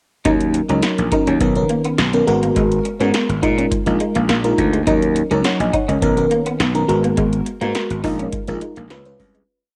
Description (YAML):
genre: early-eighties boogie funk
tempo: 104 BPM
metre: 4/4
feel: straight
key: Eb minor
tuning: A4 = 439 Hz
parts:
  - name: FM electric piano with soft pad layer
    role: accompaniment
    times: 0.2-9.4 s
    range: C#3 to Ab5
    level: -21 LUFS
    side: equal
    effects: chorus, phaser, cassette tape
  - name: electric guitar through a small old amp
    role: riff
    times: 0.3-9.4 s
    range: Ab3 to Eb4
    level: -26 LUFS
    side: equal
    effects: ensemble chorus, cassette tape
  - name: gritty slap bass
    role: bass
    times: 0.3-9.4 s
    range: Ab1 to Bb2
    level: -23 LUFS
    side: equal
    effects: overdrive
  - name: electro analog drum machine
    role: drums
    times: 0.3-9.5 s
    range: hi-hat, kick drum, snare drum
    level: -26 LUFS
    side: equal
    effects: cassette tape
room: light reverb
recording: home recording on cassette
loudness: -18 LUFS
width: mono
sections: 0.3-9.5 verse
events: fade-out 7.2-9.5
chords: 0.3 Ebm7; 1.4 Bmaj9; 2.3 Abm9; 3.4 Bb7sus4; 4.9 Ebm7; 6.0 Bmaj9; 6.9 Abm9; 8.0 Bb7sus4; 8.9 Db7